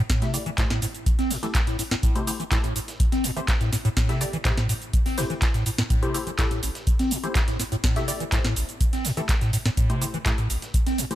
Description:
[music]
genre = acid house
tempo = 124 BPM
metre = 4/4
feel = straight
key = A minor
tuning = A4 = 439 Hz
[part]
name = liquid acid bass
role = riff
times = 0.1-11.1 s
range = A1 to C4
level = -27 LUFS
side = equal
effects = phaser, overdrive, wide subtle chorus
[part]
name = booming analog drum machine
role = drums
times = 0.1-11.2 s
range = handclaps, hi-hat, shaker, snare drum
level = -29 LUFS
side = right 1 dB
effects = none
[part]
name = dusty soul sampler-style drum kit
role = drums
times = 0.1-11.1 s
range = hi-hat, snare drum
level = -39 LUFS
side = right 1 dB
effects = overdrive, high-pass filter on snare, sidechain pumping on hats, high-pass filter on hats
[part]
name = electronic kick drum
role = drums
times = 0.1-10.8 s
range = none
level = -24 LUFS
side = equal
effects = none
[part]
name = filtered dub chord stab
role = stabs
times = 0.2-11.2 s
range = A3 to E5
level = -33 LUFS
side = left 2 dB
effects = phaser, cassette tape, dub echo
[sound]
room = little or no reverb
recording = none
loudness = -22 LUFS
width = side -13 dB against mid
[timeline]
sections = 0.0-11.2 A section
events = none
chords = 0.0 Am7

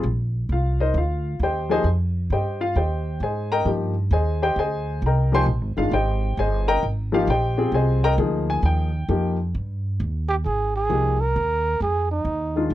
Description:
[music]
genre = modal jazz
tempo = 133 BPM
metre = 4/4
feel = swing 66% on 8ths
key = Ab lydian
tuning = A4 = 440 Hz
[part]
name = warm baby grand piano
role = accompaniment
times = 0.0-12.7 s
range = Eb3 to C6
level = -23 LUFS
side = left 2 dB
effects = none
[part]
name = upright bass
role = bass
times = 0.0-12.7 s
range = G1 to Ab2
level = -23 LUFS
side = equal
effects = none
[part]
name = breathy trumpet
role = melody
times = 10.3-12.7 s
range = Eb4 to Bb4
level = -23 LUFS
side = right 3 dB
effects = none
[sound]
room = little or no reverb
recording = dry, close 1970s-style studio recording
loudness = -20 LUFS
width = side -14 dB against mid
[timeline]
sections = 0.0-10.4 A section; 10.4-12.7 B section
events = none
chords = 0.0 Abmaj9; 10.4 Abadd9

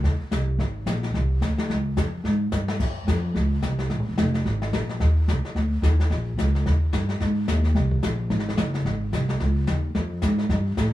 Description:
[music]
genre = jazz, small-group swing and bop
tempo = 218 BPM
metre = 4/4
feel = swing 59% on 8ths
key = Eb major, Ab major from 7.2 s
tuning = A4 = 441 Hz
[part]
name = upright bass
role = bass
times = 0.0-10.9 s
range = F1 to A2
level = -22 LUFS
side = equal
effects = none
[part]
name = jazz brush drum kit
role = drums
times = 0.0-10.9 s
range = brushed snare drum, crash cymbal, hi-hat, kick drum, snare drum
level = -30 LUFS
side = left 3 dB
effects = none
[sound]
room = light reverb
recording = none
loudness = -21 LUFS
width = side -14 dB against mid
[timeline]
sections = 0.0-7.2 A section; 7.2-10.9 B section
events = drum fill 2.2-2.8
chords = none

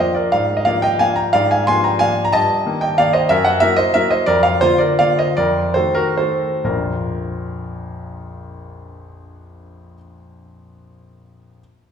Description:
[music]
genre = classical, piano waltz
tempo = 123-193 BPM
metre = 3/4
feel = rubato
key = Bb major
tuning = A4 = 440 Hz
[part]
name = warm concert grand piano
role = solo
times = 0.0-11.6 s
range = Bb1 to C6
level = -15 LUFS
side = equal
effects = none
[sound]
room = wet recital hall reverb, RT60 1.7 s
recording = recorded in a church or concert hall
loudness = -14 LUFS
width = side -7 dB against mid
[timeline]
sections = 0.0-6.7 A section; 6.7-9.5 B section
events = slowing down 3.8-6.7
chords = 0.3 Bb7/Ab; 2.3 Eb/G; 3.3 Gb7; 4.3 Bb/F; 5.4 F7b9; 6.7 Bb

